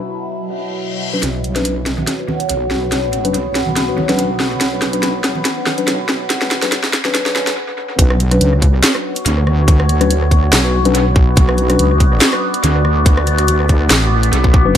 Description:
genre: deep dubstep.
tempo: 142 BPM.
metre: 4/4.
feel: swing 55% on 16ths, half-time.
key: B minor.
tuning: A4 = 444 Hz.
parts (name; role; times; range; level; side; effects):
overtone-sweeping drone; sustained chords; 0.0-14.8 s; B2 to D5; -20 LUFS; equal; chorus, built-in reverb, phaser.
reverse cymbal; sound effects; 0.6-1.2 s; none; -26 LUFS; left 7 dB; none.
mellow tine electric piano; stabs; 1.1-11.9, 14.7-14.8 s; F#3 to B4; -20 LUFS; left 3 dB; slow stereo tremolo, low-pass filter, dub echo.
wobble bass; bass; 1.2-14.8 s; A1 to D2; -16 LUFS; equal; chorus.
garage drum kit; drums; 1.2-14.8 s; handclaps, hi-hat, ride cymbal, rim click, snare drum; -17 LUFS; equal; overdrive, analog delay.
congas; percussion; 2.0-7.4 s; none; -26 LUFS; right 2 dB; dub echo.
electronic kick drum; drums; 8.0-14.8 s; none; -11 LUFS; equal; overdrive.
room: light reverb.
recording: echo-heavy mix, high-pass filter.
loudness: -12 LUFS.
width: side -10 dB against mid.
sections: 0.0-1.2 A section; 1.2-8.0 B section; 8.0-14.8 C section.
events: reverse cymbal 0.6-1.2; build-up 1.2-8.0; drum fill 1.2-7.6; filter sweep on tine electric piano 1.2-8.0; filter sweep 1.2-8.0; stop 7.6-8.0; drop 8.0-14.8.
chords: 0.0 B5; 1.2 Bmadd9.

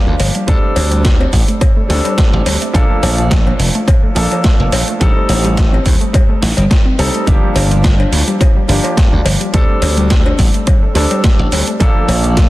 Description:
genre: nu-disco, nu disco.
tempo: 106 BPM.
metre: 4/4.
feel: swing 55% on 16ths.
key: unclear.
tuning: A4 = 440 Hz.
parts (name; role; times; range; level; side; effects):
warm baby grand piano; accompaniment; 0.0-12.5 s; F3 to A4; -19 LUFS; right 1 dB; sidechain pumping, dub echo.
wide unison pluck; arpeggios; 0.1-12.4 s; F3 to Eb4; -21 LUFS; left 1 dB; sidechain pumping, dub echo.
glassy slap bass; bass; 0.1-12.5 s; F1 to Eb2; -15 LUFS; equal; tube saturation, sidechain pumping.
dusty soul sampler-style drum kit; drums; 0.2-12.5 s; hi-hat, snare drum; -20 LUFS; right 1 dB; overdrive, studio reverb.
cowbell; percussion; 0.2-12.2 s; none; -24 LUFS; left 3 dB; none.
electronic kick drum; drums; 0.5-12.5 s; none; -12 LUFS; equal; studio reverb.
room: light reverb.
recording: dense, heavily limited modern master, lossy compression artefacts.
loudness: -10 LUFS.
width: side -17 dB against mid.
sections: 0.0-12.5 A section.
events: none.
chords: 0.5 D7sus4; 2.7 Bbmaj7; 5.0 Am7b5; 7.3 Gm7; 9.5 D7sus4; 11.8 Bbmaj7.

